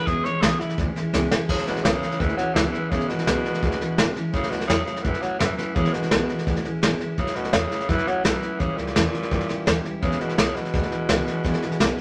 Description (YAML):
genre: rockabilly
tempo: 169 BPM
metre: 4/4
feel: straight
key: E mixolydian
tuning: A4 = 439 Hz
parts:
  - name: growling tenor saxophone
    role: melody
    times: 0.0-12.0 s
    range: A#2 to C#5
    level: -29 LUFS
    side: equal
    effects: none
  - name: picked steel-string acoustic guitar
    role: accompaniment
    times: 0.0-12.0 s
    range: E2 to E4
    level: -30 LUFS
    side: equal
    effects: none
  - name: upright bass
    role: bass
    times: 0.1-12.0 s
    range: E1 to G2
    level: -34 LUFS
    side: equal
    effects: none
  - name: vintage brush drum kit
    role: drums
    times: 0.1-12.0 s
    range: crash cymbal, hi-hat, kick drum, snare drum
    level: -26 LUFS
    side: equal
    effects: none
room: wet studio reverb, RT60 0.8 s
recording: none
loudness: -23 LUFS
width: mono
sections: 0.0-1.5 A section; 1.5-12.0 B section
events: tenor saxophone solo 0.0-1.5; drum fill 1.1-1.5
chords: 0.0 E6; 4.3 A6; 5.8 E6; 7.2 A6; 8.6 A#dim7; 10.0 E6